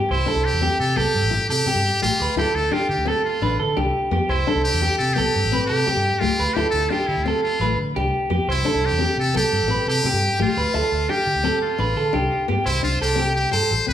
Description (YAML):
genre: highlife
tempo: 115 BPM (dotted quarters)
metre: 12/8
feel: straight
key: C major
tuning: A4 = 440 Hz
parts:
  - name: fingerpicked steel-string acoustic guitar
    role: accompaniment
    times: 0.0-13.9 s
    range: B2 to E5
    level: -28 LUFS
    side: left 6 dB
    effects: none
  - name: electric guitar at the edge of break-up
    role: arpeggios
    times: 0.0-13.7 s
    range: G4 to C5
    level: -22 LUFS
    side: right 2 dB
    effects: none
  - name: trumpet with metal mute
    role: melody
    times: 0.1-13.9 s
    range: E4 to C5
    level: -23 LUFS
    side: left 1 dB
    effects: none
  - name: fingered electric bass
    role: bass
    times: 0.1-13.9 s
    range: A1 to D3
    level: -24 LUFS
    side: equal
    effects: none
room: wet large studio reverb, RT60 1.2 s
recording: band playing live in one room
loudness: -18 LUFS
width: side -10 dB against mid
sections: 0.0-12.7 A section; 12.7-13.9 B section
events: none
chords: 0.0 C; 2.2 Dm; 4.3 C5; 6.4 Dm; 8.5 C5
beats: | 0.10 0.62 1.15 1.67 | 2.19 2.72 3.24 3.77 | 4.29 4.82 5.34 5.86 | 6.39 6.91 7.43 7.96 | 8.48 9.00 9.53 10.05 | 10.57 11.09 11.62 12.14 | 12.66 13.19 13.71